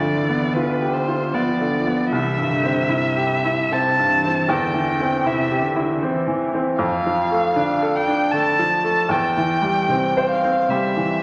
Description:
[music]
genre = classical, slow romantic movement for piano quartet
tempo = 77 BPM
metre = 3/4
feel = rubato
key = C major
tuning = A4 = 440 Hz
[part]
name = muted violin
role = melody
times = 0.0-11.2 s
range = B4 to A5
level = -24 LUFS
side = equal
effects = none
[part]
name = muted cello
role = second line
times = 0.0-11.2 s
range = C3 to F3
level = -31 LUFS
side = equal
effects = none
[part]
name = bright baby grand piano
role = accompaniment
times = 0.0-11.2 s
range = C2 to C5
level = -23 LUFS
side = equal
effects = none
[sound]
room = wet scoring stage reverb, RT60 1.9 s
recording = none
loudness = -20 LUFS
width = mono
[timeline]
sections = 0.0-11.2 A section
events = none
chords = 0.0 G7/D; 2.1 C; 4.5 C/E; 6.8 Dm/F; 9.1 C/E

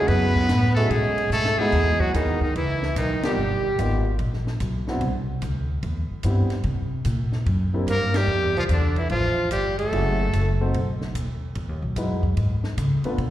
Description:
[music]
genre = jazz, small-group swing and bop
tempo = 147 BPM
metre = 4/4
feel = swing 66% on 8ths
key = unclear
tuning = A4 = 440 Hz
[part]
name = trumpet with metal mute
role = melody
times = 0.0-4.0, 7.9-10.6 s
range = D4 to B4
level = -26 LUFS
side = left 2 dB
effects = slapback echo
[part]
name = growling tenor saxophone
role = second line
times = 0.0-4.0, 7.9-10.6 s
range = D3 to B3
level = -26 LUFS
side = right 3 dB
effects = slapback echo
[part]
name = dark baby grand piano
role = accompaniment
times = 0.0-13.2 s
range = F#3 to C5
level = -29 LUFS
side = left 1 dB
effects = slapback echo
[part]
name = upright bass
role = bass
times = 0.0-13.3 s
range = F#1 to C#3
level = -23 LUFS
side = equal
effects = none
[part]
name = compact cocktail drum kit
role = drums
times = 0.1-13.3 s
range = crash cymbal, hi-hat, kick drum, ride cymbal, snare drum, toms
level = -33 LUFS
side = equal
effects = none
[sound]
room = light reverb, studio reverb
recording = live gig heard through the venue's PA, recital hall reverb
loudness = -21 LUFS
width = side -13 dB against mid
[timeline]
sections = 0.0-1.7 A section; 1.7-13.3 B section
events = drum fill 1.3-1.7; band accent 3.2, 8.1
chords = 0.1 F#m7; 0.9 B69; 1.7 Emaj9; 3.4 G7alt; 5.0 Cmaj7; 6.7 C7(no3); 8.3 Fmaj9; 9.9 F#m9; 10.7 B; 11.5 Emaj9

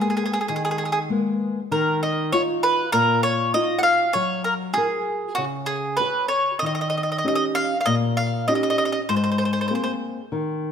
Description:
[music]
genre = italian folk, Italian serenade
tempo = 98 BPM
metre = 4/4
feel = straight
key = Eb minor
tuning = A4 = 440 Hz
[part]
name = mandolin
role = melody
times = 0.0-9.9 s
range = Gb4 to Gb5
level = -22 LUFS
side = right 1 dB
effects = slapback echo
[part]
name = nylon-string guitar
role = accompaniment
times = 0.0-10.7 s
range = Ab2 to Db5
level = -24 LUFS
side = left 2 dB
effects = none
[sound]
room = moderate recital hall reverb, RT60 1.8 s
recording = close, detailed microphones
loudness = -20 LUFS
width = side -7 dB against mid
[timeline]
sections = 0.0-10.7 A section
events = none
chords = 0.0 Abmadd9; 1.7 Ebmadd9; 4.2 Gbadd9; 6.6 Eb7; 9.1 Abadd9

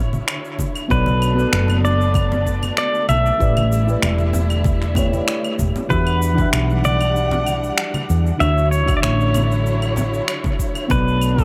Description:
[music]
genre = sunset chillout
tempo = 96 BPM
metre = 4/4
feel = swing 53% on 16ths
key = E dorian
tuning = A4 = 443 Hz
[part]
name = mellow FM electric piano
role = accompaniment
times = 0.0-11.4 s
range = D3 to E5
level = -27 LUFS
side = equal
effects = chorus, phaser, cassette tape, dub echo
[part]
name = warm symphonic string section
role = sustained chords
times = 0.0-11.4 s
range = D3 to F#5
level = -31 LUFS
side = equal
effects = none
[part]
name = woody fretless electric bass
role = bass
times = 0.0-11.4 s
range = E1 to E2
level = -21 LUFS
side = equal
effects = none
[part]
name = electronic shaker, finger snaps and claves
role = drums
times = 0.1-11.4 s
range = none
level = -28 LUFS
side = equal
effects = overdrive, dub echo
[part]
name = congas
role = percussion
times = 0.1-11.4 s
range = none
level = -30 LUFS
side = equal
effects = dub echo
[part]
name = electronic kick drum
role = drums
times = 0.6-11.4 s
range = none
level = -24 LUFS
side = equal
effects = none
[part]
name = pedal steel guitar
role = melody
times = 0.9-11.4 s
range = B4 to E5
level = -25 LUFS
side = equal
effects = dub echo
[sound]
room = light reverb, digital ambience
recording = echo-heavy mix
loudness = -18 LUFS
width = mono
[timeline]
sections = 0.0-5.9 A section; 5.9-11.4 A section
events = none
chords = 0.0 Dmaj9; 0.9 Bm9; 3.4 A7sus4; 5.9 Em9; 8.4 Dmaj9; 10.9 Bm9

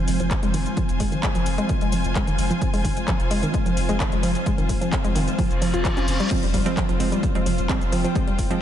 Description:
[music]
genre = driving peak-time techno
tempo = 130 BPM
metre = 4/4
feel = straight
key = F minor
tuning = A4 = 439 Hz
[part]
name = woody wave-folded pluck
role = riff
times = 0.0-8.6 s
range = Eb3 to F4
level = -26 LUFS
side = equal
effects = chorus, overdrive, cassette tape, sidechain pumping, ping-pong delay
[part]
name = saturated sub bass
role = bass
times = 0.0-8.5 s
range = F1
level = -27 LUFS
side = equal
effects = overdrive, sidechain pumping, low-pass filter
[part]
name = swarming drone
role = drone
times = 0.0-8.6 s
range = F3 to C4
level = -31 LUFS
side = equal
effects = built-in reverb, sidechain pumping
[part]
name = rich studio string section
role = texture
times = 0.0-8.6 s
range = F4 to Ab5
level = -31 LUFS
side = left 2 dB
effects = sidechain pumping
[part]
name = techno drum kit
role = drums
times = 0.1-8.6 s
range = crash cymbal, handclaps, hi-hat, shaker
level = -31 LUFS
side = left 1 dB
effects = sidechain pumping on hats, sidechain pumping on perc, sidechain pumping on cymbals
[part]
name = electronic kick drum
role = drums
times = 0.3-8.5 s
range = none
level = -24 LUFS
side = equal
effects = none
[part]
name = reverse cymbal and impact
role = sound effects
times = 5.5-8.2 s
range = none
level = -33 LUFS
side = left 1 dB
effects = none
[part]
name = wavetable chord stab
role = stabs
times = 6.3-8.6 s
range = F3 to C4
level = -27 LUFS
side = right 4 dB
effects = sidechain pumping, tape echo
[sound]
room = moderate lush hall reverb, RT60 2.0 s, digital ambience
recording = dreamy mix soaked in reverb, nothing above 11.0 kHz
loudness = -20 LUFS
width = side -10 dB against mid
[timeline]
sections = 0.0-6.3 A section; 6.3-8.6 B section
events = reverse cymbal 5.5-6.3; drop 6.3-8.6; impact 6.3-8.2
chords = 0.0 Fm

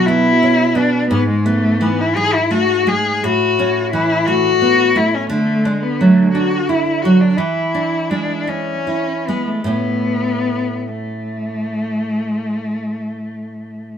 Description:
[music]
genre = romantic duo for cello and classical guitar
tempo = 49-59 BPM (dotted quarters)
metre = 12/8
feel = rubato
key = A major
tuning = A4 = 440 Hz
[part]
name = rich cello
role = melody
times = 0.0-14.0 s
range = G#3 to G#4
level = -17 LUFS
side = left 3 dB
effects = none
[part]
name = nylon-string guitar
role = accompaniment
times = 0.0-14.0 s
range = G#2 to E4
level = -17 LUFS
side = right 2 dB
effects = none
[sound]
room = moderate studio reverb, RT60 0.9 s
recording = band playing live in one room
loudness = -14 LUFS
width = side -8 dB against mid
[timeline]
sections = 0.0-14.0 A section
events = none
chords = 0.0 Bm; 1.1 E/G#; 3.2 A; 5.3 D; 7.4 E7; 9.7 A

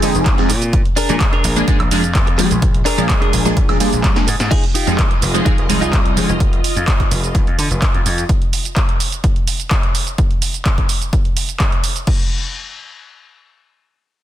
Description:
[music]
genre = filtered disco house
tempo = 127 BPM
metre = 4/4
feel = straight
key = F dorian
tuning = A4 = 437 Hz
[part]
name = funky polysynth comp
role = accompaniment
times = 0.0-6.3 s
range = F3 to Ab4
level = -18 LUFS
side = equal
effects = chorus, phaser, sidechain pumping, low-pass filter
[part]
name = gritty slap bass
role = bass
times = 0.0-8.2 s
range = F1 to G3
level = -20 LUFS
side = equal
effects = overdrive, sidechain pumping, low-pass filter
[part]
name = punchy analog drum machine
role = drums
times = 0.0-12.2 s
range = crash cymbal, handclaps, hi-hat, shaker, snare drum, woodblock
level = -21 LUFS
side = right 2 dB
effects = sidechain pumping on hats, sidechain pumping on perc, sidechain pumping on cymbals
[part]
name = electronic kick drum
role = drums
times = 0.3-12.2 s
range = none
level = -16 LUFS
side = equal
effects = none
[part]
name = direct-recorded clean electric guitar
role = riff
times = 0.4-6.3 s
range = D4 to Bb4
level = -23 LUFS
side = equal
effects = phaser, sidechain pumping, low-pass filter
[part]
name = string machine, full ensemble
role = sustained chords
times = 4.8-8.3 s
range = F4 to Eb5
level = -26 LUFS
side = right 1 dB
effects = ensemble chorus, vintage 12-bit sampler grit, sidechain pumping, low-pass filter
[sound]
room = little or no reverb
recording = dense, heavily limited modern master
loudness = -13 LUFS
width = side -12 dB against mid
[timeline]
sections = 0.0-4.5 A section; 4.5-12.1 B section; 12.1-14.2 C section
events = drum fill 4.0-4.5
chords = 0.0 Fm7; 0.7 Bb7; 4.5 Fm7; 8.3 N.C.

